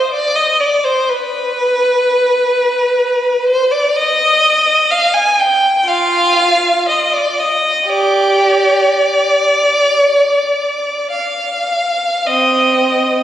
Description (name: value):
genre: classical, free, expressive piece for unaccompanied violin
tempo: 48-65 BPM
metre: 4/4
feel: rubato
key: unclear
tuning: A4 = 439 Hz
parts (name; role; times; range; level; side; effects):
- rich violin; solo; 0.0-13.2 s; C4 to Ab5; -11 LUFS; equal; none
room: wet church reverb, RT60 2.9 s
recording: recorded on a phone in the room, studio reverb, nothing above 10.8 kHz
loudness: -11 LUFS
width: side -11 dB against mid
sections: 0.0-13.2 A section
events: none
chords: none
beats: | 0.12 1.09 2.05 3.01 | 3.97 4.91 5.85 6.85 | 7.86 8.91 9.98 11.10 | 12.27